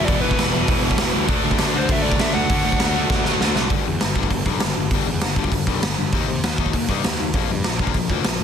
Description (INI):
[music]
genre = punk rock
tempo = 198 BPM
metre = 4/4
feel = straight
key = G major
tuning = A4 = 441 Hz
[part]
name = overdriven semi-hollow guitar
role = melody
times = 0.0-3.4 s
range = B4 to F#5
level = -27 LUFS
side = left 2 dB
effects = tape echo
[part]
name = overdriven semi-hollow guitar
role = riff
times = 0.0-8.4 s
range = E2 to Eb4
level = -25 LUFS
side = left 15 dB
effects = none
[part]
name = sludgy distorted guitar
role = riff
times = 0.0-3.7 s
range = D3 to E4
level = -28 LUFS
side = right 1 dB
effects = none
[part]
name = tight distorted guitar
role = riff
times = 0.0-3.7 s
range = E2 to D4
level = -26 LUFS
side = right 15 dB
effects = distortion
[part]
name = fuzz picked electric bass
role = bass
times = 0.0-8.4 s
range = E1 to D3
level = -26 LUFS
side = right 1 dB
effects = overdrive
[part]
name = raw garage drum kit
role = drums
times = 0.1-8.3 s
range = hi-hat, kick drum, snare drum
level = -21 LUFS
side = right 1 dB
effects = none
[sound]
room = little or no reverb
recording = dense, heavily limited modern master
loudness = -18 LUFS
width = side -8 dB against mid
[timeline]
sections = 0.0-3.7 A section; 3.7-8.4 B section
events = drum fill 3.1-3.7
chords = 0.0 Em; 1.3 D; 3.7 G5; 6.1 Eb5; 7.3 Bb5